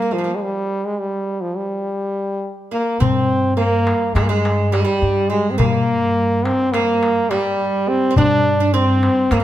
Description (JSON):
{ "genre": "Turkish makam ensemble", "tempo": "209 BPM (eighths)", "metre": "9/8", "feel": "straight", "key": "G makam kurdi", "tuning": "A4 = 441 Hz", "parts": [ { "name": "bright trombone", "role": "melody", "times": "0.0-9.4 s", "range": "F3 to D4", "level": "-18 LUFS", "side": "equal", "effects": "slapback echo" }, { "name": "oud", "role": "second line", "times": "0.0-9.4 s", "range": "G3 to D4", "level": "-24 LUFS", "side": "right 5 dB", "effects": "none" }, { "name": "upright bass", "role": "bass", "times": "0.0-9.4 s", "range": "G2 to G3", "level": "-20 LUFS", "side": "equal", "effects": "none" }, { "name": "darbuka", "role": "percussion", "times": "0.1-9.4 s", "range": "none", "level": "-23 LUFS", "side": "left 4 dB", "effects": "none" }, { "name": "warm studio cello section", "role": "drone", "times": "3.0-9.4 s", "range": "G2", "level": "-29 LUFS", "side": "left 1 dB", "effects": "none" } ], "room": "moderate recital hall reverb, RT60 1.6 s", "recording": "close, detailed microphones", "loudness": "-16 LUFS", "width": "side -12 dB against mid", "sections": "0.0-3.0 A section; 3.0-9.4 B section", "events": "stop 0.4-3.0", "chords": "none" }